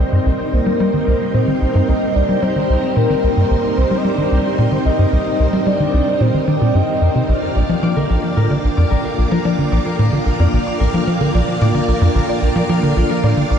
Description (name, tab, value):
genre	ambient, sequencer-driven space music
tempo	111 BPM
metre	4/4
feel	straight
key	Bb major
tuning	A4 = 440 Hz
part	soft octave-layered synth lead	melody	0.0-7.3 s	Bb4 to Eb5	-21 LUFS	left 1 dB	chorus, phaser, tape echo
part	string machine, full ensemble	sustained chords	0.0-13.6 s	G3 to F5	-20 LUFS	equal	ensemble chorus
part	concert harp	arpeggios	0.0-0.4, 7.4-13.6 s	G4 to D6	-26 LUFS	left 1 dB	auto-pan, tape echo
part	tight sequencer bass	riff	0.0-13.5 s	Bb1 to G3	-16 LUFS	equal	analog chorus, cassette tape, tape echo
part	wind-like tuned noise texture	texture	0.0-13.6 s	G5	-31 LUFS	right 4 dB	built-in reverb
room	wet huge ambient reverb, RT60 8.4 s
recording	dark, warm production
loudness	-14 LUFS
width	side -8 dB against mid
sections	0.0-13.6 A section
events	filter sweep on analog synth bass 0.0-13.6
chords	0.0 Cm7; 7.3 Bb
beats	0.26 | 0.80 1.34 1.88 2.42 | 2.96 3.50 4.04 4.58 | 5.12 5.67 6.21 6.75 | 7.29 7.83 8.37 8.91 | 9.45 9.99 10.53 11.07 | 11.61 12.15 12.69 13.23